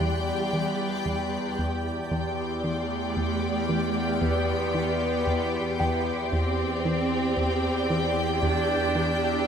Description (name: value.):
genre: cinematic, suspense film score.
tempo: 57 BPM.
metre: 4/4.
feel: straight.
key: unclear.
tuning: A4 = 439 Hz.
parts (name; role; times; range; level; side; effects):
rich studio violin section; melody; 0.0-9.5 s; G5; -34 LUFS; left 3 dB; none.
rich studio violin section; second line; 0.0-9.5 s; D5; -35 LUFS; left 1 dB; none.
clear studio viola section; accompaniment; 0.0-9.5 s; G4; -34 LUFS; right 2 dB; none.
shimmering ambient pad; sustained chords; 0.0-9.5 s; G4 to G5; -35 LUFS; equal; chorus, built-in reverb, phaser.
plucky analog bass; riff; 0.0-9.3 s; E2 to E3; -30 LUFS; equal; none.
bright studio double bass section; bass; 0.0-9.5 s; E2; -33 LUFS; right 1 dB; none.
rich studio cello section; bass; 0.0-9.5 s; G3 to D4; -30 LUFS; right 1 dB; none.
overtone-sweeping drone; drone; 0.0-9.5 s; E2; -36 LUFS; left 1 dB; chorus, built-in reverb, phaser.
bright grand piano; texture; 0.0-9.5 s; G5; -35 LUFS; left 1 dB; none.
rich studio violin section; texture; 0.0-9.5 s; B5 to F#6; -39 LUFS; left 4 dB; none.
room: wet scoring stage reverb, RT60 1.9 s.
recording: minimal, uncompressed stereo recording.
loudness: -24 LUFS.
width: side -7 dB against mid.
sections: 0.0-9.5 A section.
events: none.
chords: 0.0 Em7; 2.1 Csus2/E.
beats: 0.01 1.07 | 2.12 3.17 4.22 5.28 | 6.33 7.38 8.44.